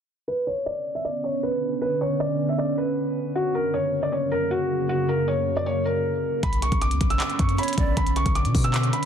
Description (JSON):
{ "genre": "hip hop, trap", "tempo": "156 BPM", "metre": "4/4", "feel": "half-time", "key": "B harmonic minor", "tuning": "A4 = 439 Hz", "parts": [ { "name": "felt-muted upright piano", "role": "melody", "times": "0.3-9.1 s", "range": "F#4 to E6", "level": "-25 LUFS", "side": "equal", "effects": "low-pass filter, tape echo" }, { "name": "deep dark ambient pad", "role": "sustained chords", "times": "1.0-9.1 s", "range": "F#2 to C#4", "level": "-27 LUFS", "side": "right 1 dB", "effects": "chorus, built-in reverb, low-pass filter" }, { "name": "warm 808-style bass", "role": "bass", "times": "6.4-8.9 s", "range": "B1 to B2", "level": "-24 LUFS", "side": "equal", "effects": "none" }, { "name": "glitchy drum kit", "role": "drums", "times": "6.4-9.1 s", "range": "handclaps, hi-hat, kick drum", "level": "-25 LUFS", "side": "equal", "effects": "none" }, { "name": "breathy large pan pipes", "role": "second line", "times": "7.6-8.0 s", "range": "C#5 to D5", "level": "-34 LUFS", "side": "right 4 dB", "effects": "tape echo" } ], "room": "light reverb", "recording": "dense, heavily limited modern master", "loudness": "-22 LUFS", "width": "side -8 dB against mid", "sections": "0.3-6.4 A section; 6.4-9.1 B section", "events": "filter sweep 0.3-6.4", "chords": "0.3 Bmadd9; 3.4 F#; 6.4 Bmadd9", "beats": "| 0.28 0.66 1.05 1.43 | 1.81 2.20 2.58 2.97 | 3.35 3.74 4.12 4.51 | 4.89 5.28 5.66 6.05 | 6.43 6.82 7.20 7.58 | 7.97 8.35 8.74" }